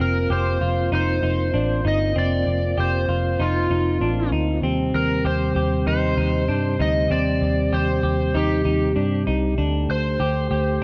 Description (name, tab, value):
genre	dream pop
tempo	97 BPM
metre	4/4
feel	straight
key	C dorian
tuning	A4 = 440 Hz
part	overdriven slide guitar	melody	0.0-10.8 s	F4 to Eb5	-27 LUFS	equal	digital delay
part	percussive tonewheel organ	sustained chords	0.0-10.8 s	C3 to G4	-29 LUFS	equal	chorus vibrato, slow rotary speaker
part	semi-hollow electric guitar	arpeggios	0.0-10.8 s	C4 to G4	-29 LUFS	equal	lush chorus, digital delay
part	vintage muted picked electric bass	bass	0.0-10.8 s	F1 to G2	-25 LUFS	equal	none
room	moderate plate reverb, RT60 2.7 s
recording	dark, warm production, nothing above 7.6 kHz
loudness	-21 LUFS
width	mono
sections	0.0-10.8 A section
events	none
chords	0.0 Fsus4; 4.6 Cmadd9; 9.6 Gsus2/D